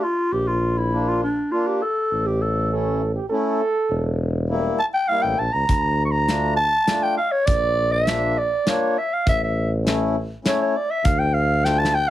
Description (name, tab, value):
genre	klezmer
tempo	101 BPM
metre	3/4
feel	straight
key	D harmonic minor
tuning	A4 = 439 Hz
part	growling clarinet	melody	0.0-12.1 s	D4 to C#6	-20 LUFS	equal	none
part	mellow accordion	accompaniment	0.0-12.0 s	G3 to F4	-25 LUFS	left 1 dB	none
part	warm tuba	bass	0.3-12.1 s	E1 to D2	-23 LUFS	equal	none
part	dark trombone	second line	2.7-4.5 s	G4 to A4	-24 LUFS	right 4 dB	none
part	loose indie drum kit	drums	5.7-12.0 s	hi-hat, kick drum, snare drum	-22 LUFS	equal	none
room	moderate small room ambience, RT60 0.5 s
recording	heavily compressed radio sound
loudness	-19 LUFS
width	side -13 dB against mid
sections	0.0-12.1 A section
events	clarinet solo 0.0-12.1; drum fill 11.7-12.1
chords	0.3 Bb; 2.1 A; 3.9 Edim; 5.7 Dm; 7.5 Bb; 9.3 A; 11.1 Dm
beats	| 0.33 0.93 1.52 | 2.12 2.72 3.31 | 3.91 4.50 5.10 | 5.69 6.29 6.89 | 7.48 8.08 8.67 | 9.27 9.86 10.46 | 11.05 11.65